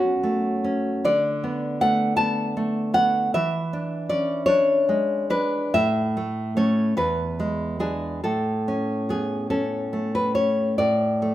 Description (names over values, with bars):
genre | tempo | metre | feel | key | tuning
romantic piece for solo classical guitar | 45-54 BPM (dotted quarters) | 6/8 | rubato | A major | A4 = 440 Hz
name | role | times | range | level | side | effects
nylon-string guitar | solo | 0.0-11.3 s | E2 to A5 | -21 LUFS | equal | none
room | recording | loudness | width
moderate recital hall reverb, RT60 1.5 s | minimal, uncompressed stereo recording | -21 LUFS | side -14 dB against mid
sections
0.0-10.8 A section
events
none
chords
0.0 F#m; 1.1 Bm7/D; 3.4 E7; 5.8 A; 7.0 E7; 8.2 A; 10.8 N.C.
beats
| 1.08 2.21 | 3.35 4.48 | 5.76 6.97 | 8.23 9.50 | 10.79